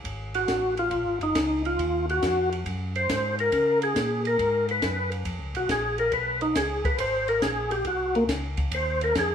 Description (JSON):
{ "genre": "soul jazz organ trio", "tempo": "138 BPM", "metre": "4/4", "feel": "swing 68% on 8ths", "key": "Ab mixolydian", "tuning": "A4 = 440 Hz", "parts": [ { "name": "mellow tonewheel organ", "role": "bass", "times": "0.0-9.3 s", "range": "Gb1 to Db3", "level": "-32 LUFS", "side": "equal", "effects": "chorus vibrato, slow rotary speaker" }, { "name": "compact cocktail drum kit", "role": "drums", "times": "0.0-9.3 s", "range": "hi-hat, kick drum, ride cymbal, snare drum", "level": "-32 LUFS", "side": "left 1 dB", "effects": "none" }, { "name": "overdriven tonewheel organ", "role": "melody", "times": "0.4-9.3 s", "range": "Bb3 to C5", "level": "-24 LUFS", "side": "left 1 dB", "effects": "slow rotary speaker, chorus vibrato" } ], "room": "moderate digital room reverb, RT60 1.1 s, studio reverb", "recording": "rough home demo mix, small room ambience", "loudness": "-23 LUFS", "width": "side -8 dB against mid", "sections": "0.0-9.3 A section", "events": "tonewheel organ solo 0.0-9.3", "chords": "0.0 Ab7; 3.5 Db7(no3); 7.0 Ab9", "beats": "| 0.04 0.48 0.91 1.35 | 1.78 2.22 2.65 3.08 | 3.52 3.95 4.39 4.82 | 5.25 5.69 6.12 6.55 | 6.99 7.42 7.85 8.29 | 8.72 9.15" }